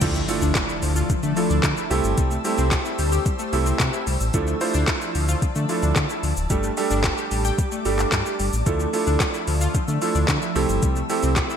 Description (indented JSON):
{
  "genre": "dance-pop",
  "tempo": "111 BPM",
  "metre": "4/4",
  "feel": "straight",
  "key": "D minor",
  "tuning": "A4 = 440 Hz",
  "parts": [
    { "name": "clear concert grand piano", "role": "accompaniment", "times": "0.0-11.6 s", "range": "G3 to C5", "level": "-26 LUFS", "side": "right 5 dB", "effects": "sidechain pumping" },
    { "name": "ethereal airy pad", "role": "sustained chords", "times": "0.0-11.6 s", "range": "F3 to E6", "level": "-30 LUFS", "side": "left 2 dB", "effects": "ensemble chorus, built-in reverb, sidechain pumping" },
    { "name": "analog pluck", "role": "arpeggios", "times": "0.0-11.6 s", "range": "F3 to G5", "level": "-30 LUFS", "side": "left 4 dB", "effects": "chorus, sidechain pumping, ping-pong delay" },
    { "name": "sub bass with octave", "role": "bass", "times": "0.0-11.4 s", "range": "D1 to D3", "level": "-23 LUFS", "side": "left 1 dB", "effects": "sidechain pumping" },
    { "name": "smooth R&B drum kit", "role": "drums", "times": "0.0-11.6 s", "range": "crash cymbal, handclaps, hi-hat, kick drum, shaker, snare drum", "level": "-25 LUFS", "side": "left 1 dB", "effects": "gated reverb" },
    { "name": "impact", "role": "sound effects", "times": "0.0-2.2 s", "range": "none", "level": "-35 LUFS", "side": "equal", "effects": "none" }
  ],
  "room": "light reverb",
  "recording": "bright 1980s-style digital production, high-pass filter",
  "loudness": "-19 LUFS",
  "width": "side -8 dB against mid",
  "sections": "0.0-11.6 A section",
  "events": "drop 0.0-11.6; impact 0.0-2.2",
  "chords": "0.0 Dmadd9; 1.9 Am7; 4.3 Dmadd9; 6.5 Gsus2; 8.7 Dmadd9; 10.6 Am7"
}